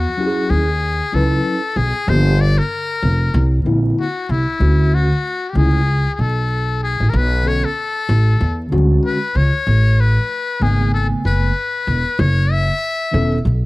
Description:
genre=hip hop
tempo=95 BPM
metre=4/4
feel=swing 57% on 16ths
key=E major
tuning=A4 = 436 Hz
part: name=trumpet with metal mute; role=melody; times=0.0-13.5 s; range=E4 to E5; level=-21 LUFS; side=left 4 dB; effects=cassette tape, plate reverb
part: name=upright bass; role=bass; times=0.0-13.7 s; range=E1 to E2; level=-15 LUFS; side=equal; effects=none
part: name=mellow tine electric piano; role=accompaniment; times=0.2-13.4 s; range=C#3 to G#5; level=-20 LUFS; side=equal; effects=medium stereo tremolo, cassette tape
room=light reverb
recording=home recording on cassette, vinyl crackle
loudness=-14 LUFS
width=side -20 dB against mid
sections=0.0-13.7 A section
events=none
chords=0.0 E69; 2.1 Gm7; 3.3 C9; 4.6 Dmaj7; 7.1 Bm9; 8.4 E13; 9.7 Amaj9; 12.2 F#m7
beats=0.19 0.82 1.45 | 2.08 2.71 3.34 3.98 | 4.61 5.24 5.87 6.50 | 7.13 7.76 8.40 9.03 | 9.66 10.29 10.92 11.55 | 12.19 12.82 13.45

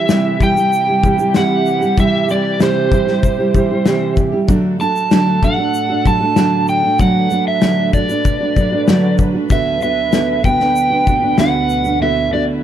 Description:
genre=acoustic pop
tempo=96 BPM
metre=4/4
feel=straight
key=unclear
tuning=A4 = 440 Hz
part: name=overdriven slide guitar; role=melody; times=0.0-12.4 s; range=C5 to A5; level=-17 LUFS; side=right 2 dB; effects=none
part: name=nylon-string guitar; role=accompaniment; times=0.0-12.6 s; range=C3 to G4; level=-16 LUFS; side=right 2 dB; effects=none
part: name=warm studio string section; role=sustained chords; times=0.0-12.6 s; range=D2 to B4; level=-26 LUFS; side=left 1 dB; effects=none
part: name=loose indie drum kit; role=drums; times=0.1-12.0 s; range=kick drum, shaker, snare drum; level=-17 LUFS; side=left 2 dB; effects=none
room=light reverb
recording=dark, warm production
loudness=-12 LUFS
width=side -10 dB against mid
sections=0.0-12.6 A section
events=none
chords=0.0 C; 4.5 D; 9.5 Bm/D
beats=0.09 0.72 1.35 | 1.97 2.60 3.23 3.86 | 4.48 5.11 5.74 6.37 | 6.99 7.62 8.25 8.87 | 9.50 10.13 10.76 11.38 | 12.01

